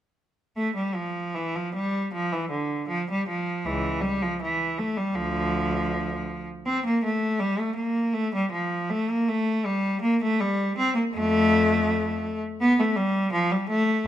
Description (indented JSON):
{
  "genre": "classical, baroque-style suite movement for unaccompanied cello",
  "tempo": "80 BPM",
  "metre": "4/4",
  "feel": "rubato",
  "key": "unclear",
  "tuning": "A4 = 439 Hz",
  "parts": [
    { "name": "rich cello", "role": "solo", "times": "0.6-14.1 s", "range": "C#2 to C4", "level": "-23 LUFS", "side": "equal", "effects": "none" }
  ],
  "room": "light reverb",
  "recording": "close, detailed microphones",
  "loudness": "-23 LUFS",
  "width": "side -11 dB against mid",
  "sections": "0.6-14.1 A section",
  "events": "none",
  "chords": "none",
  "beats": "| 0.56 1.33 2.10 2.87 | 3.63 4.38 5.13 5.88 | 6.64 7.39 8.14 8.89 | 9.63 10.38 11.13 11.87 | 12.60 13.33"
}